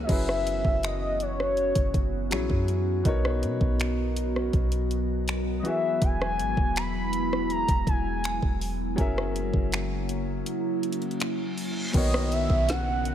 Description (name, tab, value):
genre	contemporary R&B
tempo	81 BPM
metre	4/4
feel	straight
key	unclear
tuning	A4 = 440 Hz
part	gliding portamento lead	melody	0.0-13.1 s	C#5 to B5	-29 LUFS	left 1 dB	chorus, tape echo
part	clear concert grand piano	accompaniment	0.0-13.1 s	B2 to E5	-33 LUFS	left 2 dB	none
part	glassy FM pad	sustained chords	0.0-13.1 s	C#3 to A#4	-32 LUFS	equal	ensemble chorus, built-in reverb, sidechain pumping
part	soft 808-style bass	bass	0.0-13.1 s	E1 to B2	-30 LUFS	equal	none
part	smooth R&B drum kit	drums	0.1-13.1 s	crash cymbal, finger snaps, hi-hat, kick drum, rim click, snare drum	-28 LUFS	equal	none
part	reverse cymbal and downlifter	sound effects	11.3-13.1 s	none	-39 LUFS	right 2 dB	none
room	light reverb, digital ambience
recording	none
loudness	-24 LUFS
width	side -10 dB against mid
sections	0.1-11.9 A section; 11.9-13.1 B section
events	kick muted 10.5-11.9; reverse cymbal 11.3-11.9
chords	0.1 F#7sus4; 3.1 Bmaj7; 5.6 E; 9.0 F#7; 11.9 Bmaj9